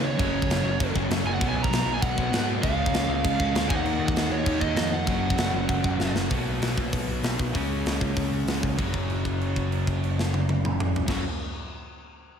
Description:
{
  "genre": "punk rock",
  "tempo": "195 BPM",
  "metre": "4/4",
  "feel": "straight",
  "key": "F# major",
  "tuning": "A4 = 440 Hz",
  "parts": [
    { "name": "lead guitar through a small cranked amp", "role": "melody", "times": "0.0-6.1 s", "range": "C#5 to A#5", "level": "-30 LUFS", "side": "right 2 dB", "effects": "overdrive" },
    { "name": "crunchy overdriven guitar", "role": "riff", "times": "0.0-11.2 s", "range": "F#2 to D#4", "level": "-31 LUFS", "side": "left 8 dB", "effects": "none" },
    { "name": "distorted electric guitar", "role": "riff", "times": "0.0-11.2 s", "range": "F#2 to D#4", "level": "-32 LUFS", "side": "right 9 dB", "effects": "distortion, slapback echo" },
    { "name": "fuzz guitar", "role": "riff", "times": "0.0-6.3 s", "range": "F#2 to D#4", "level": "-33 LUFS", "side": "right 1 dB", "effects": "none" },
    { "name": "overdriven picked electric bass", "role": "bass", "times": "0.0-11.2 s", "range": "F#1 to C#3", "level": "-30 LUFS", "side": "equal", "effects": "none" },
    { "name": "tight metal drum kit", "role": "drums", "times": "0.2-11.2 s", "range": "crash cymbal, hi-hat, kick drum, snare drum, toms", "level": "-28 LUFS", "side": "equal", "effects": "none" }
  ],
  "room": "moderate lush hall reverb, RT60 2.2 s",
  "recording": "big arena sound",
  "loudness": "-23 LUFS",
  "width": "side -7 dB against mid",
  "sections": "0.0-6.3 A section; 6.3-8.8 B section; 8.8-11.3 C section",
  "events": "drum fill 6.0-6.3; held note 8.8-11.1",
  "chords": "0.2 F#5; 1.4 B5; 2.6 C#; 3.7 D#m; 5.1 F#5; 6.3 B5; 7.5 C#5; 8.8 F#5"
}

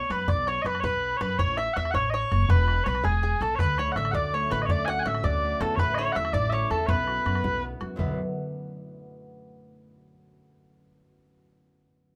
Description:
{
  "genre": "celtic folk, Celtic jig",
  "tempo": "109 BPM (dotted quarters)",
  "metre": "6/8",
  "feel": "straight",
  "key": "B dorian",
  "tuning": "A4 = 440 Hz",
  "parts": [
    { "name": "mellow small bagpipes", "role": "melody", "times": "0.0-7.6 s", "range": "G#4 to G#5", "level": "-29 LUFS", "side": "equal", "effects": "none" },
    { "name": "bluegrass banjo", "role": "second line", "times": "0.0-7.6 s", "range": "G#4 to F#5", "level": "-37 LUFS", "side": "equal", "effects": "none" },
    { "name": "mellow tin whistle", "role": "second line", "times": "0.0-7.6 s", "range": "G#5 to F#6", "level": "-38 LUFS", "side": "equal", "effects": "none" },
    { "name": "concert harp", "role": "accompaniment", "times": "0.0-1.2, 3.6-9.9 s", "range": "B1 to D5", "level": "-36 LUFS", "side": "equal", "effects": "none" },
    { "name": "upright bass", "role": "bass", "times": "0.1-8.2 s", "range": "E1 to F#2", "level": "-31 LUFS", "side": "equal", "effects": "none" },
    { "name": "bodhran", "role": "percussion", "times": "0.1-8.2 s", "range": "none", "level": "-32 LUFS", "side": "equal", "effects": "none" }
  ],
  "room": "wet studio ambience, RT60 0.5 s",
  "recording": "none",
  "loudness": "-26 LUFS",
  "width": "mono",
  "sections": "0.0-8.0 A section; 8.0-9.1 B section",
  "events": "none",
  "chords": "0.0 B5; 1.4 A; 2.5 E; 3.6 Dmaj7; 5.8 A5; 6.9 B5; 8.0 Bm"
}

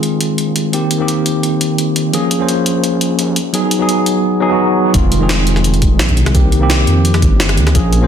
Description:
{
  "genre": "liquid drum and bass",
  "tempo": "171 BPM",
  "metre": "4/4",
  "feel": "straight",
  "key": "F minor",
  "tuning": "A4 = 440 Hz",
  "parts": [
    { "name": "tine electric piano", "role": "accompaniment", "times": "0.0-8.1 s", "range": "Eb3 to C5", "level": "-14 LUFS", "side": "equal", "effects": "medium stereo tremolo, low-pass filter, tape echo" },
    { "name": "dark detuned saw bass", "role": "bass", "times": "0.0-8.1 s", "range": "F1 to F2", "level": "-17 LUFS", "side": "equal", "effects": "high-pass filter" },
    { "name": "jungle sampler-style drum kit", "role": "drums", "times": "0.0-8.0 s", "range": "hi-hat, snare drum", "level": "-19 LUFS", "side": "equal", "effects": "small room reverb" },
    { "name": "electronic kick drum", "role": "drums", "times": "4.9-7.8 s", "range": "none", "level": "-14 LUFS", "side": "equal", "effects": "overdrive, small room reverb" }
  ],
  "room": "moderate digital room reverb, RT60 0.9 s, digital ambience",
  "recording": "dense, heavily limited modern master",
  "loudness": "-11 LUFS",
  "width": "side -8 dB against mid",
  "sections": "0.0-4.9 A section; 4.9-8.1 B section",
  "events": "build-up 0.0-4.9; filter sweep on tine electric piano 0.0-4.9; drop 4.9-8.1",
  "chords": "0.0 Fm7; 0.7 Cm7; 2.1 Bbm7; 3.4 Abm7; 4.9 Fm7; 6.3 Cm7"
}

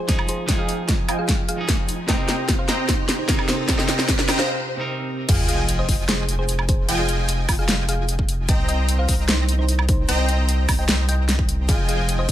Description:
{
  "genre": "future bass",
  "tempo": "150 BPM",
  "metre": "4/4",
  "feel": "half-time",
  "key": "F minor",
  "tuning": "A4 = 440 Hz",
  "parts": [
    { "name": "thumb-piano-like synth pluck", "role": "melody", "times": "0.0-12.3 s", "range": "Eb4 to G5", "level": "-30 LUFS", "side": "equal", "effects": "chorus, sidechain pumping, ping-pong delay" },
    { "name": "semi-hollow electric guitar", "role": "accompaniment", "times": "0.0-5.3 s", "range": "C3 to Bb4", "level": "-29 LUFS", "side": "right 2 dB", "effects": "sidechain pumping, tape echo" },
    { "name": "supersaw stab", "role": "riff", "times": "0.0-12.3 s", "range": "F3 to Bb5", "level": "-27 LUFS", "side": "equal", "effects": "sidechain pumping, low-pass filter" },
    { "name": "riser and sub drop", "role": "sound effects", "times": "1.9-6.9 s", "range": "none", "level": "-31 LUFS", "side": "equal", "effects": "none" },
    { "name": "dubstep drum kit", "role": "drums", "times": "0.1-12.3 s", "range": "crash cymbal, hi-hat, snare drum, woodblock", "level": "-23 LUFS", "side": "equal", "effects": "none" },
    { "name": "electronic kick drum", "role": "drums", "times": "0.1-12.3 s", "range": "none", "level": "-22 LUFS", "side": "equal", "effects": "none" },
    { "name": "saturated sub bass", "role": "bass", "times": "5.3-12.3 s", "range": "F1 to C2", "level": "-22 LUFS", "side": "equal", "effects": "sidechain pumping" }
  ],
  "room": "light reverb",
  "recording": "none",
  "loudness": "-18 LUFS",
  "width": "side -12 dB against mid",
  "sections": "0.0-5.3 A section; 5.3-12.3 B section",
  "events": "build-up 0.0-5.3; drum fill 0.0-4.5; filter sweep on supersaw synth 0.0-5.3; riser 1.9-4.5; break 4.5-5.3; drop 5.3-12.3; impact 5.3-6.9",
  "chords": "0.0 Fm9; 2.1 Cm7; 5.3 Fm9; 8.5 Cm7; 11.7 Fm9"
}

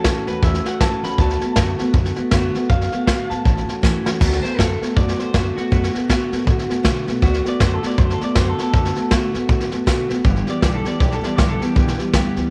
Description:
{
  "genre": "rockabilly",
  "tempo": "159 BPM",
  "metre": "4/4",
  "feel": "swing 60% on 8ths",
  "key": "D major",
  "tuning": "A4 = 440 Hz",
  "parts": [
    { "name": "electric guitar through a small old amp", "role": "melody", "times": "0.0-12.0 s", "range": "F#4 to B5", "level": "-30 LUFS", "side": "equal", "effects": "spring reverb, tape echo" },
    { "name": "picked steel-string acoustic guitar", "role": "accompaniment", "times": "0.0-12.5 s", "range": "G2 to G4", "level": "-24 LUFS", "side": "equal", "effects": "none" },
    { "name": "upright bass", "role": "bass", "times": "0.0-12.5 s", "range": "F#1 to B2", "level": "-26 LUFS", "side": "equal", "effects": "none" },
    { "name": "vintage brush drum kit", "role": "drums", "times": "0.0-12.4 s", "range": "crash cymbal, hi-hat, kick drum, snare drum", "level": "-22 LUFS", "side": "equal", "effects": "none" }
  ],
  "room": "light reverb, small room ambience",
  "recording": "none",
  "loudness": "-19 LUFS",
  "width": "mono",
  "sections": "0.0-4.2 A section; 4.2-12.5 B section",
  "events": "drum fill 3.8-4.2; clean electric guitar solo 4.2-12.5",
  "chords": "0.0 A6; 1.2 D6; 3.5 A6; 4.2 D6; 10.2 G6"
}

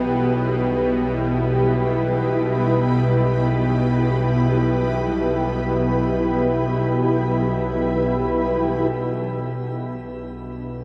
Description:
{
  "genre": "dark ambient drone",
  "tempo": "free time",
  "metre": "none",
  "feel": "none",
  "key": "unclear",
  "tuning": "A4 = 441 Hz",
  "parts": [
    { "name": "granular cloud pad", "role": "sustained chords", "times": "0.0-10.8 s", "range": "B3 to B4", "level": "-24 LUFS", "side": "equal", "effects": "built-in reverb, shimmer reverb" },
    { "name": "bowed-like drone", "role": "drone", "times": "0.0-10.8 s", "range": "B1 to B2", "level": "-24 LUFS", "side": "equal", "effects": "built-in reverb" }
  ],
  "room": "wet huge ambient reverb, RT60 7.3 s",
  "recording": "dreamy mix soaked in reverb",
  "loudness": "-21 LUFS",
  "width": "mono",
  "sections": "0.0-8.9 A section; 8.9-10.8 B section",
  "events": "none",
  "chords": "0.0 G/B; 8.9 Bm"
}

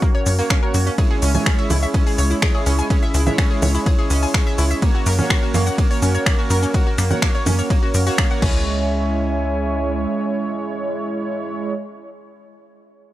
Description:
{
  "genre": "melodic techno",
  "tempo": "125 BPM",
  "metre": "4/4",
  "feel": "straight",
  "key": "C# dorian",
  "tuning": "A4 = 443 Hz",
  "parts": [
    { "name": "dark analog pad", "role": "sustained chords", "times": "0.0-11.7 s", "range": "C#4 to G#5", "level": "-27 LUFS", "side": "equal", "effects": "chorus, vintage 12-bit sampler grit, sidechain pumping" },
    { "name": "analog pluck", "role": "arpeggios", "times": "0.0-8.9 s", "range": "A#3 to G#5", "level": "-27 LUFS", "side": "left 1 dB", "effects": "chorus, sidechain pumping, tape echo" },
    { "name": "analog synth brass", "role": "stabs", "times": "0.0-11.7 s", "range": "G#3 to C#5", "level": "-25 LUFS", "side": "right 3 dB", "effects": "chorus, sidechain pumping, tape echo" },
    { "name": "electronic kick drum", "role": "drums", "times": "0.0-8.5 s", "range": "none", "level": "-18 LUFS", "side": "equal", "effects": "overdrive" },
    { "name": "techno drum kit", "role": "drums", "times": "0.0-8.5 s", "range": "congas, crash cymbal, finger snaps, hi-hat, ride cymbal, shaker", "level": "-24 LUFS", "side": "right 1 dB", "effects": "overdrive" },
    { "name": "tight sequencer bass", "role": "bass", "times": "0.3-10.1 s", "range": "C#2 to F#2", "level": "-19 LUFS", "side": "equal", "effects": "tube saturation, sidechain pumping" }
  ],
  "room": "digital ambience",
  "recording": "dry, gritty hardware recording",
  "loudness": "-16 LUFS",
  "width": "side -14 dB against mid",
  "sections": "0.0-8.7 A section; 8.7-12.5 B section",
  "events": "drop 0.0-8.7",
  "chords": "0.0 F#; 1.0 C#m; 4.8 F#; 8.4 C#m"
}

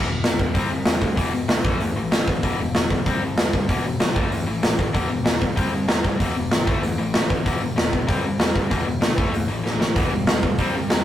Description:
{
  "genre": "punk rock",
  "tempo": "191 BPM",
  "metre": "4/4",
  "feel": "straight",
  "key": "E minor",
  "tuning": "A4 = 442 Hz",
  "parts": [
    { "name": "tight distorted guitar", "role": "riff", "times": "0.0-11.0 s", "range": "E2 to C4", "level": "-25 LUFS", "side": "left 3 dB", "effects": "distortion" },
    { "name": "modern bright picked electric bass", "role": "bass", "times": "0.0-11.0 s", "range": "E1 to E2", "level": "-30 LUFS", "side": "equal", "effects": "none" },
    { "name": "big rock drum kit", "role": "drums", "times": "0.2-11.0 s", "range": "hi-hat, kick drum, snare drum", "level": "-21 LUFS", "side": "equal", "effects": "none" },
    { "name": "tight distorted guitar", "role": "riff", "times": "10.0-11.0 s", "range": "C3 to C4", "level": "-27 LUFS", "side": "right 5 dB", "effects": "distortion" }
  ],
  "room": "light reverb",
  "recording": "rough rehearsal-room recording, warm saturation",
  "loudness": "-19 LUFS",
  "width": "side -12 dB against mid",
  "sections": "0.0-11.0 A section",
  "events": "drum fill 9.7-10.0",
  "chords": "0.0 E5; 0.6 C; 1.2 E5; 1.6 A5; 2.4 E5; 3.1 C; 3.7 E5; 4.2 A5; 4.9 E5; 5.6 C; 6.2 Em; 6.7 A5; 7.5 E5; 8.1 C; 8.7 E5; 9.2 A5; 10.0 Em"
}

